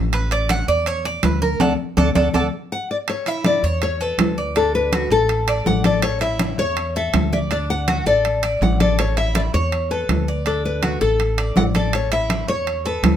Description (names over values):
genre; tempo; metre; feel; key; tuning
latin, Cuban son and guajira; 163 BPM; 4/4; straight; A major; A4 = 439 Hz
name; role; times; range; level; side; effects
upright bass; bass; 0.0-13.2 s; A1 to E2; -23 LUFS; equal; none
Cuban tres; arpeggios; 0.1-13.2 s; D4 to F#5; -24 LUFS; right 3 dB; none
congas; percussion; 0.1-13.2 s; none; -24 LUFS; left 2 dB; none
timbales; percussion; 0.1-13.2 s; none; -24 LUFS; right 5 dB; none
nylon-string guitar; melody; 2.7-13.2 s; A4 to F#5; -21 LUFS; left 4 dB; none
room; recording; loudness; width
moderate studio reverb, RT60 0.7 s; none; -17 LUFS; side -10 dB against mid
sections
0.0-3.1 A section; 3.1-13.2 B section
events
Cuban tres solo 0.0-3.1; band accent 1.6-3.1; drum fill 2.5-3.1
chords
0.1 A5; 1.6 D; 3.1 Aadd9; 4.6 D; 6.0 A; 7.5 D; 9.0 Aadd9; 10.5 D5; 11.9 Aadd9